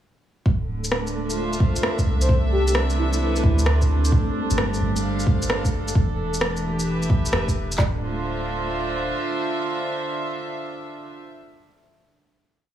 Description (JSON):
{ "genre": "future garage", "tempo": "131 BPM", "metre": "4/4", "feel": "swing 67% on 16ths", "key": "D dorian", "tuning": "A4 = 440 Hz", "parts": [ { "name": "rich chamber string section", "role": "sustained chords", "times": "0.5-11.3 s", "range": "C3 to F5", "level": "-27 LUFS", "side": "right 1 dB", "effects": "sidechain pumping" }, { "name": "soft 808-style bass", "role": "bass", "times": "0.5-9.1 s", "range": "D1 to D2", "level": "-24 LUFS", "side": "right 1 dB", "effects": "sidechain pumping" }, { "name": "organic electronic drum kit", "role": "drums", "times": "0.5-7.9 s", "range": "handclaps, kick drum, snare drum", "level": "-21 LUFS", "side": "equal", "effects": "overdrive, studio reverb" }, { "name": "flickering grainy texture", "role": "texture", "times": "0.8-7.8 s", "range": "A3 to A4", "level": "-32 LUFS", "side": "equal", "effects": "built-in reverb" }, { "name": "electronic shaker and rim click", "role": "drums", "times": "0.8-7.8 s", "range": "none", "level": "-26 LUFS", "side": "equal", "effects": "overdrive, studio reverb" }, { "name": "breathy flute-like synth lead", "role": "melody", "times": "2.2-3.7 s", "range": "E4 to C5", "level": "-28 LUFS", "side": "left 1 dB", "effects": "chorus, dub echo" } ], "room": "light reverb, digital ambience", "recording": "small room reverb", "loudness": "-20 LUFS", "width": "side -11 dB against mid", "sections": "0.5-7.8 groove; 7.8-11.5 final chord", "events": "none", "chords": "0.5 Dm7; 2.3 Cmaj7; 4.1 G7sus4; 6.0 Em7; 7.8 Dm7", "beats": "| 0.46 0.92 1.38 1.83 | 2.29 2.75 3.21 3.67 | 4.12 4.58 5.04 5.50 | 5.96 6.41 6.87 7.33 | 7.79 8.25 8.70 9.16 | 9.62 10.08 10.54 10.99" }